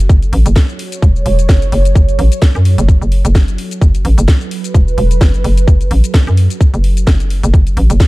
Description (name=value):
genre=bass house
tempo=129 BPM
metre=4/4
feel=swing 56% on 16ths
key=F# minor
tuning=A4 = 440 Hz
part: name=sweeping resonant pad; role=sustained chords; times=0.0-8.1 s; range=F#3 to C#5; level=-23 LUFS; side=right 4 dB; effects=chorus, sidechain pumping
part: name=hollow knocking FM bass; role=bass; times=0.0-8.0 s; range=E1 to F#2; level=-11 LUFS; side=equal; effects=sidechain pumping
part: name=garage drum kit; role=drums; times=0.0-8.1 s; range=hi-hat, shaker, snare drum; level=-23 LUFS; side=left 1 dB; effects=small room ambience
part: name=electronic kick drum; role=drums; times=0.1-8.1 s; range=none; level=-8 LUFS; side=equal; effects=small room ambience
room=digital ambience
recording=dark, warm production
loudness=-9 LUFS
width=side -20 dB against mid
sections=0.0-8.1 A section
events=none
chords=0.0 F#m